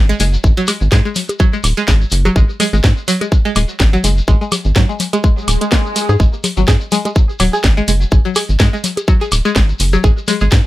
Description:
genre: minimal techno.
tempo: 125 BPM.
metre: 4/4.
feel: swing 56% on 16ths.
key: unclear.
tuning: A4 = 440 Hz.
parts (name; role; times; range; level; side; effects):
rubbery square bass; bass; 0.0-10.6 s; D#1 to G#2; -14 LUFS; equal; sidechain pumping.
string-like resonator pluck; riff; 0.1-10.4 s; F#3 to G#4; -19 LUFS; equal; chorus, sidechain pumping, tape echo.
shekere; percussion; 0.1-10.6 s; none; -25 LUFS; left 3 dB; none.
garage drum kit; drums; 0.2-10.6 s; hi-hat, snare drum; -19 LUFS; equal; none.
electronic kick drum; drums; 0.4-10.6 s; none; -12 LUFS; equal; none.
bongos, woodblock and congas; percussion; 0.7-10.4 s; none; -23 LUFS; left 3 dB; digital delay.
swell; sound effects; 5.4-6.2 s; none; -22 LUFS; left 2 dB; none.
room: little or no reverb.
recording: none.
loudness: -11 LUFS.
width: side -16 dB against mid.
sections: 0.0-10.7 A section.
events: swell 5.4-6.2.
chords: 0.0 G#5.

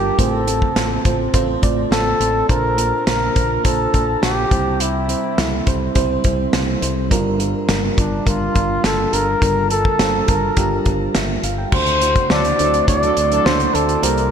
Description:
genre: 1980s-style pop.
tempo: 104 BPM.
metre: 4/4.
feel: straight.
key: unclear.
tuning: A4 = 440 Hz.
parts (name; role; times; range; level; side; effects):
mellow flugelhorn; melody; 0.0-14.3 s; D4 to D5; -20 LUFS; left 1 dB; shimmer reverb.
mellow FM electric piano; accompaniment; 0.0-14.3 s; G2 to G5; -22 LUFS; right 3 dB; chorus, shimmer reverb.
fingered electric bass; bass; 0.0-14.3 s; G1 to D2; -24 LUFS; left 1 dB; none.
modern studio drum kit; drums; 0.2-14.3 s; crash cymbal, hi-hat, kick drum, snare drum; -20 LUFS; equal; gated reverb.
brassy analog pad; sustained chords; 11.7-14.3 s; C3 to F#4; -26 LUFS; left 1 dB; chorus, shimmer reverb.
mellow synth brass; stabs; 12.3-13.6 s; F#3 to A4; -24 LUFS; right 2 dB; chorus, shimmer reverb.
room: moderate lush hall reverb, RT60 2.6 s.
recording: bright 1980s-style digital production.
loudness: -15 LUFS.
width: side -8 dB against mid.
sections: 0.0-11.7 A section; 11.7-14.3 B section.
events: none.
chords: 0.2 F/A; 2.5 Bbadd9; 4.5 C; 7.1 Gm7; 11.7 D7.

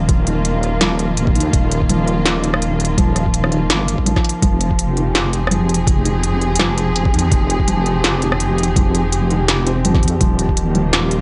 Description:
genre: half-time drum and bass.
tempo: 166 BPM.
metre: 4/4.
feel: swing 55% on 16ths, half-time.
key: F minor.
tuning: A4 = 436 Hz.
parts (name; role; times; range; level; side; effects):
muted studio string section; sustained chords; 0.0-11.2 s; Eb3 to Ab4; -25 LUFS; equal; sidechain pumping.
felt-muted upright piano; arpeggios; 0.0-11.2 s; Eb3 to C4; -24 LUFS; equal; digital delay.
deep soft wobble bass; bass; 0.0-11.2 s; Eb1 to F2; -21 LUFS; equal; chorus.
electronic kick drum; drums; 0.1-10.6 s; none; -19 LUFS; equal; overdrive.
industrial drum kit; drums; 0.1-11.2 s; hi-hat, rim click, snare drum; -21 LUFS; equal; none.
room: light reverb.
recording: nothing above 10.6 kHz.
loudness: -16 LUFS.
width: mono.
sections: 0.0-11.2 A section.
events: none.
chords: 0.0 Eb5; 4.4 Fm; 10.2 Eb.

